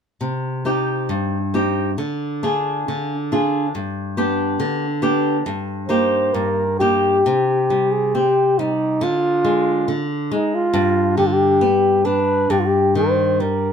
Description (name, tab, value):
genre	fado-style ballad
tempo	68 BPM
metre	2/4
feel	rubato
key	C minor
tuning	A4 = 440 Hz
part	flamenco guitar	accompaniment	0.2-13.7 s	G2 to Ab4	-20 LUFS	left 1 dB	none
part	breathy flugelhorn	melody	5.9-13.7 s	Eb4 to C5	-17 LUFS	equal	slapback echo
room	light reverb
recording	close, detailed microphones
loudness	-17 LUFS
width	side -7 dB against mid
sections	0.2-7.2 A section; 7.2-13.7 B section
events	none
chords	0.2 Cm; 2.0 Ddim; 3.7 G; 5.4 Eb/G; 7.2 C5; 9.0 Ddim; 10.8 G; 12.5 Eb/G